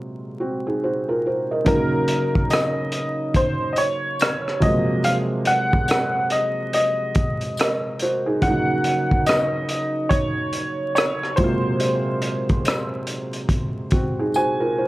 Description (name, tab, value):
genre	lo-fi hip hop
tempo	71 BPM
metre	4/4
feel	swing 60% on 16ths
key	Eb dorian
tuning	A4 = 441 Hz
part	felt-muted upright piano	accompaniment	0.0-14.9 s	Bb2 to Eb5	-23 LUFS	right 1 dB	cassette tape, low-pass filter, plate reverb
part	clear upright piano	melody	1.7-14.9 s	Bb4 to Ab5	-23 LUFS	equal	low-pass filter, plate reverb
part	crunchy breakbeat drum kit	drums	1.7-14.2 s	hi-hat, kick drum, rim click	-22 LUFS	equal	none
part	tambourine	percussion	2.5-14.6 s	none	-39 LUFS	left 4 dB	none
room	moderate studio reverb, RT60 0.5 s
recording	vinyl crackle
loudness	-19 LUFS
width	side -18 dB against mid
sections	0.0-1.7 A section; 1.7-14.9 B section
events	break 0.0-1.7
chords	0.0 Ab13; 1.7 Ebm7; 4.6 Ab13; 8.4 Ebm7; 11.4 Ab13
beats	0.82 | 1.67 2.51 3.36 4.20 | 5.05 5.89 6.74 7.58 | 8.43 9.27 10.12 10.96 | 11.81 12.65 13.50 14.34